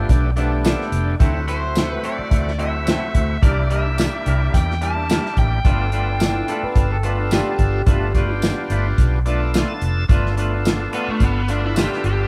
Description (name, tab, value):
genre	straight-eighth soul blues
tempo	108 BPM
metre	4/4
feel	swing 54% on 16ths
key	G mixolydian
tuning	A4 = 440 Hz
part	electric guitar through a small old amp	second line	0.0-1.3, 6.2-8.4 s	D4 to B4	-30 LUFS	equal	none
part	overdriven tonewheel organ	accompaniment	0.0-12.3 s	A3 to A5	-28 LUFS	equal	slow rotary speaker
part	vintage muted fingered electric bass	bass	0.0-12.3 s	F1 to E2	-24 LUFS	equal	none
part	warm soul drum kit	drums	0.1-12.2 s	hi-hat, kick drum, snare drum, tambourine	-21 LUFS	equal	none
part	clean electric guitar	stabs	0.2-12.2 s	F3 to B4	-32 LUFS	equal	spring reverb
part	overdriven electric guitar	melody	1.5-12.3 s	A3 to A5	-29 LUFS	equal	none
room	moderate small room reverb, RT60 0.5 s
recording	band playing live in one room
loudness	-19 LUFS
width	mono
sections	0.0-10.1 A section; 10.1-12.3 B section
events	tonewheel organ fill 9.0-10.1; overdriven electric guitar solo 10.1-12.3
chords	0.0 G9; 1.2 D9; 3.4 C9; 5.6 G9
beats	0.10 0.65 | 1.20 1.76 2.31 2.87 | 3.42 3.98 4.53 5.09 | 5.64 6.20 6.76 7.31 | 7.87 8.42 8.98 9.54 | 10.09 10.65 11.21 11.77